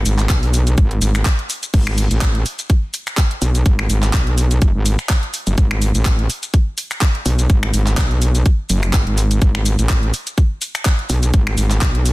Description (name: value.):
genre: bass house.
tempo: 125 BPM.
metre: 4/4.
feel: swing 55% on 16ths.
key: G# phrygian.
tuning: A4 = 439 Hz.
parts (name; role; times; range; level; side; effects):
metallic wobble bass; bass; 0.0-12.1 s; F#1 to B1; -16 LUFS; equal; chorus, tube saturation, sidechain pumping.
garage drum kit; drums; 0.1-12.1 s; crash cymbal, finger snaps, handclaps, hi-hat, shaker; -22 LUFS; equal; overdrive.
electronic kick drum; drums; 0.3-11.9 s; none; -14 LUFS; equal; overdrive.
room: little or no reverb.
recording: dense, heavily limited modern master.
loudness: -14 LUFS.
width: side -20 dB against mid.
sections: 0.0-12.1 A section.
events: none.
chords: none.